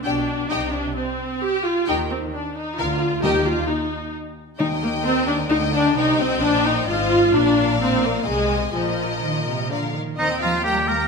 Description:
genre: quick classical-period movement for symphony orchestra.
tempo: 131 BPM.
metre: 3/4.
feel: straight.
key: Eb major from 4.6 s.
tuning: A4 = 437 Hz.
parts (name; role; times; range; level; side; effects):
clear studio violin section; melody; 0.0-11.1 s; Eb5 to Bb5; -30 LUFS; left 4 dB; none.
clear studio violin section; second line; 0.0-11.1 s; G4 to Bb5; -27 LUFS; left 4 dB; none.
rich studio viola section; accompaniment; 0.0-11.1 s; F3 to G4; -21 LUFS; left 1 dB; none.
rich studio double bass section; bass; 0.0-11.1 s; Ab1 to Eb2; -29 LUFS; right 2 dB; none.
warm studio cello section; bass; 0.1-11.1 s; Ab2 to Bb3; -29 LUFS; right 2 dB; none.
timpani; percussion; 3.2-5.2 s; Eb3; -30 LUFS; left 2 dB; none.
clear oboe; second line; 10.2-11.1 s; Eb4 to Bb4; -21 LUFS; right 1 dB; none.
room: wet recital hall reverb, RT60 1.4 s.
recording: none.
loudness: -19 LUFS.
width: side -4 dB against mid.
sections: 0.0-10.2 A section.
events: none.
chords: 0.0 G/B; 0.5 Cm; 1.9 Eb; 2.8 Bb/D; 3.2 Eb; 6.0 Cm; 6.9 Fm7/Ab; 7.3 Bb; 8.3 Ab/C; 8.8 Bbsus4; 9.7 Bb; 10.2 Eb.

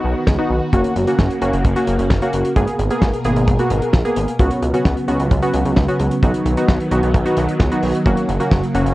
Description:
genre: synth-pop.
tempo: 131 BPM.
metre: 4/4.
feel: straight.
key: unclear.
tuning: A4 = 440 Hz.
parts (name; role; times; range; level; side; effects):
warm analog keys; accompaniment; 0.0-8.9 s; Bb3 to Ab4; -19 LUFS; equal; chorus.
string machine, violas; sustained chords; 0.0-8.9 s; Cb3 to Bb4; -22 LUFS; equal; phaser, ensemble chorus.
chorused synth bass; bass; 0.0-8.9 s; Gb1 to Db2; -20 LUFS; equal; none.
damped 70s drum kit; drums; 0.3-8.9 s; hi-hat, kick drum, snare drum; -18 LUFS; equal; none.
room: light reverb.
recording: worn, warbling old tape, cassette tape, warbly pitch drift.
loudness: -15 LUFS.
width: side -17 dB against mid.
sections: 0.0-8.9 A section.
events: none.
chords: 0.0 B; 0.7 Gb; 2.6 Abmadd9; 4.4 Db7sus4; 6.2 B; 8.1 Gb.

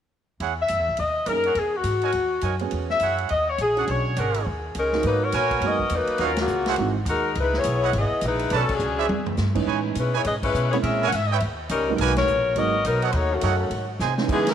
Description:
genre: jazz, big band swing.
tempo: 207 BPM.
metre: 4/4.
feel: swing 62% on 8ths.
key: G# minor.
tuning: A4 = 440 Hz.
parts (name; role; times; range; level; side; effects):
clear trumpet section; stabs; 0.4-14.1 s; D4 to A5; -29 LUFS; right 10 dB; none.
upright bass; bass; 0.4-14.5 s; G#1 to C#3; -27 LUFS; equal; none.
swinging big-band drum kit; drums; 0.4-14.5 s; crash cymbal, hi-hat, kick drum, ride cymbal, snare drum, toms; -33 LUFS; equal; none.
warm saxophone section; melody; 0.6-14.5 s; C#3 to F#5; -23 LUFS; left 3 dB; none.
warm baby grand piano; accompaniment; 1.3-6.9, 9.5-14.5 s; G#2 to A#4; -29 LUFS; right 10 dB; none.
muted trombone section; second line; 13.3-14.5 s; A2 to A#3; -32 LUFS; right 10 dB; none.
room: light reverb, small room ambience.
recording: 1960s-style stereo.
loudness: -21 LUFS.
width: side -9 dB against mid.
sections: 0.4-5.0 A section; 5.0-14.3 B section.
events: band accent 6.3, 8.7, 10.4, 12.1; drum fill 8.8-9.4, 14.0.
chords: 0.4 E69; 1.0 D#7sus4; 1.6 E69; 2.1 D#7sus4; 2.7 E69; 3.3 D#7sus4; 3.9 Bm69; 4.5 D#7sus4; 5.0 G#m9; 6.2 D#m9; 6.8 G#7b13; 7.4 C#m9; 8.5 Bm9; 9.1 E7#9; 9.7 Amaj9#11; 10.8 A#m7b5; 11.4 D#7b13; 12.0 G#m9; 13.1 D#m7b5; 13.7 G#7.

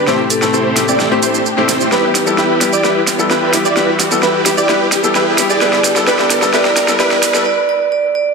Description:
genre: EDM, festival progressive house.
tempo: 130 BPM.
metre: 4/4.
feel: straight.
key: E minor.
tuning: A4 = 440 Hz.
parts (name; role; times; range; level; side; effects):
dark studio string section; sustained chords; 0.0-7.4 s; C3 to G4; -24 LUFS; left 2 dB; none.
plucky unison lead; arpeggios; 0.0-7.2 s; B4 to D5; -20 LUFS; equal; ensemble chorus, dub echo.
dense compressed supersaw; riff; 0.0-7.2 s; A3 to D5; -18 LUFS; right 1 dB; low-pass filter, dub echo.
riser; sound effects; 0.3-7.5 s; none; -22 LUFS; right 2 dB; none.
bright grand piano; accompaniment; 0.1-7.4 s; A2 to A4; -18 LUFS; left 5 dB; dub echo.
pop drum kit; drums; 0.1-7.4 s; hi-hat, shaker, snare drum; -17 LUFS; right 2 dB; overdrive, high-pass filter on snare, high-pass filter on perc, high-pass filter on hats, high-pass filter on room.
vibraphone with medium hard mallets; melody; 0.3-8.3 s; A4 to D5; -19 LUFS; right 3 dB; dub echo.
room: wet lush hall reverb, RT60 2.2 s.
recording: dense, heavily limited modern master, high-pass filter.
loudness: -11 LUFS.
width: side -4 dB against mid.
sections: 0.0-8.3 A section.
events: build-up 0.0-8.3; drum fill 0.0-7.5; filter sweep on digital synth lead 0.0-8.3; riser 0.3-7.5; break 7.5-8.3.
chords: 0.1 Am7; 1.9 Emadd11; 5.6 G; 7.5 N.C..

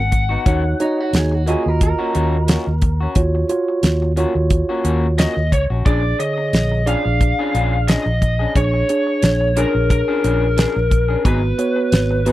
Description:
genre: straight-eighth soul blues.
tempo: 89 BPM.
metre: 4/4.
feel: swing 54% on 16ths.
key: Eb minor.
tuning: A4 = 440 Hz.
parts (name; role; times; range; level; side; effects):
lead guitar through a small cranked amp; melody; 0.0-1.1, 5.2-12.3 s; Bb4 to Gb5; -21 LUFS; left 1 dB; overdrive.
fingered electric bass; bass; 0.0-12.3 s; Ab1 to Eb2; -19 LUFS; equal; none.
electric guitar through a small old amp; stabs; 0.1-12.3 s; F3 to Ab4; -26 LUFS; left 5 dB; none.
damped 70s drum kit; drums; 0.1-12.3 s; hi-hat, kick drum, snare drum; -17 LUFS; equal; none.
mellow tine electric piano; accompaniment; 0.5-12.3 s; D3 to Eb5; -21 LUFS; right 2 dB; none.
electric guitar through a small old amp; second line; 0.8-3.1 s; Eb4 to Bb4; -26 LUFS; right 3 dB; none.
room: little or no reverb.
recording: dry, close 1970s-style studio recording.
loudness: -15 LUFS.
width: side -15 dB against mid.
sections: 0.0-12.3 A section.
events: none.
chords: 0.5 Ebm7; 5.9 Bb7#9; 11.3 Abm7.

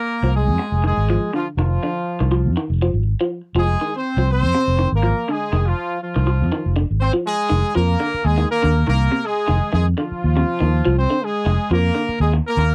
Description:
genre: afrobeat.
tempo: 122 BPM.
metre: 4/4.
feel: swing 53% on 16ths.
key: F dorian.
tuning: A4 = 440 Hz.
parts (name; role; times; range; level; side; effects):
bright horn section; melody; 0.0-12.7 s; F3 to C5; -24 LUFS; equal; none.
electric guitar through a small old amp; arpeggios; 0.2-12.6 s; C3 to F3; -27 LUFS; equal; phaser.
fingered electric bass; bass; 0.2-12.7 s; F1 to F2; -20 LUFS; equal; none.
room: little or no reverb.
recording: dry, close 1970s-style studio recording.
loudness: -19 LUFS.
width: mono.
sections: 0.0-7.5 A section; 7.5-12.7 B section.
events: none.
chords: 0.0 Fm7.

